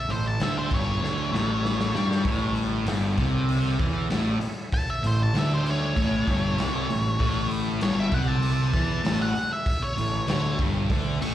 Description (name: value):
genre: blues rock power trio and southern rock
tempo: 97 BPM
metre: 4/4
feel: straight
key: A mixolydian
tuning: A4 = 440 Hz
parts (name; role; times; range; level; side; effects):
- octave-fuzz lead guitar; melody; 0.0-11.3 s; C5 to C#6; -30 LUFS; equal; distortion, slapback echo
- overdriven tonewheel organ; sustained chords; 0.0-11.3 s; A4 to E5; -42 LUFS; right 4 dB; none
- sludgy distorted guitar; riff; 0.1-11.3 s; G2 to G3; -25 LUFS; equal; overdrive, slapback echo
- fuzz picked electric bass; bass; 0.1-11.3 s; G1 to G2; -30 LUFS; equal; overdrive
- raw garage drum kit; drums; 0.1-11.3 s; hi-hat, kick drum, snare drum; -29 LUFS; equal; none
room: light reverb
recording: live gig heard through the venue's PA, club reverb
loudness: -22 LUFS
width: side -12 dB against mid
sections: 0.0-11.3 A section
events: lead electric guitar solo 0.0-11.3; drum fill 1.0-2.3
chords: 0.0 A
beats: 0.41 1.03 1.65 | 2.26 2.88 3.50 4.11 | 4.73 5.35 5.96 6.58 | 7.20 7.82 8.43 9.05 | 9.67 10.29 10.90